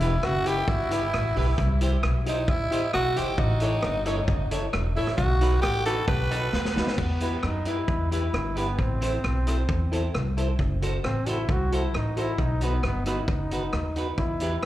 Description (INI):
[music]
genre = ska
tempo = 133 BPM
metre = 4/4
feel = straight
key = E harmonic minor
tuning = A4 = 442 Hz
[part]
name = growling tenor saxophone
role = melody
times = 0.0-6.9 s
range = D#4 to B4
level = -28 LUFS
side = equal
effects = tape echo
[part]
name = semi-hollow electric guitar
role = accompaniment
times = 0.0-14.6 s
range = D#4 to C#5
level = -34 LUFS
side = right 4 dB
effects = slapback echo
[part]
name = mellow tonewheel organ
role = stabs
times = 0.0-14.5 s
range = D#4 to C#5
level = -35 LUFS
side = left 3 dB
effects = overdrive, chorus vibrato, slow rotary speaker, tape echo
[part]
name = upright bass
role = bass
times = 0.0-14.6 s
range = E1 to F#2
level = -26 LUFS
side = equal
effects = none
[part]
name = vintage drum kit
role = drums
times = 0.0-14.7 s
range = crash cymbal, hi-hat, kick drum, rim click, snare drum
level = -30 LUFS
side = equal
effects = tape echo
[part]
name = brilliant trombone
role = melody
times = 6.9-14.6 s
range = B3 to F#4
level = -31 LUFS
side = left 1 dB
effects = tape echo, slapback echo
[sound]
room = light reverb, small room reverb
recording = live gig heard through the venue's PA, club reverb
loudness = -23 LUFS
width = side -14 dB against mid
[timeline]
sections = 0.0-7.0 A section; 7.0-14.7 B section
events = tenor saxophone solo 0.0-7.0; drum fill 6.5-7.0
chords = 0.0 Em; 1.6 C; 3.4 A; 5.2 B; 7.0 Em; 8.8 Am; 10.6 F#dim; 12.4 B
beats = 0.23 0.68 1.13 | 1.58 2.03 2.48 2.93 | 3.38 3.83 4.28 4.73 | 5.18 5.63 6.08 6.53 | 6.98 7.43 7.88 8.34 | 8.79 9.23 9.69 10.14 | 10.59 11.04 11.49 11.94 | 12.39 12.84 13.29 13.73 | 14.18 14.63